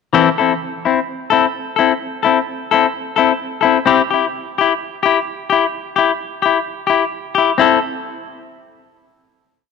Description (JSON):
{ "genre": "highlife", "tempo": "129 BPM", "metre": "4/4", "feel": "straight", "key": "A minor", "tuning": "A4 = 440 Hz", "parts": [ { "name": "semi-hollow electric guitar", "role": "solo", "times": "0.1-7.8 s", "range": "E3 to A4", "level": "-14 LUFS", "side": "left 8 dB", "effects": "none" } ], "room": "moderate echo chamber reverb, RT60 2.0 s", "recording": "none", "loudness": "-14 LUFS", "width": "side -5 dB against mid", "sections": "0.1-7.6 A section; 7.6-9.5 final chord", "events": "none", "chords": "0.1 Am; 3.9 C (rootless); 7.6 Am" }